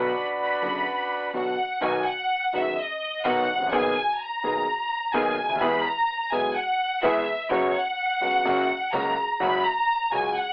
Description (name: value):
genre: tango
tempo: 126 BPM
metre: 4/4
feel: rubato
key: B major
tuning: A4 = 440 Hz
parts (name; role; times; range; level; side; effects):
- bandoneon; melody; 0.0-1.3 s; D4 to B4; -27 LUFS; right 1 dB; none
- clear studio violin section; second line; 0.0-10.5 s; C#5 to B5; -24 LUFS; equal; cassette tape
- warm concert grand piano; accompaniment; 0.0-10.3 s; F#1 to G#4; -26 LUFS; equal; cassette tape
- warm chamber string section; stabs; 0.0-10.3 s; G#3 to G#4; -32 LUFS; right 1 dB; cassette tape
- clear double bass; bass; 0.0-10.3 s; F#1 to E2; -36 LUFS; equal; none
room: moderate booth ambience, RT60 0.2 s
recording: home recording on cassette, telephone sound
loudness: -22 LUFS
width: side -26 dB against mid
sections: 0.0-1.8 A section; 1.8-10.5 B section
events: violin section solo 1.8-10.5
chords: 0.0 Bm; 1.8 B; 3.7 G#madd9/B; 5.6 E; 7.5 F#sus4; 8.5 F#; 9.4 F#sus2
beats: 0.38 0.86 1.34 | 1.82 2.30 2.78 3.25 | 3.73 4.20 4.67 5.15 | 5.62 6.09 6.56 7.03 | 7.50 7.98 8.45 8.93 | 9.41 9.89 10.36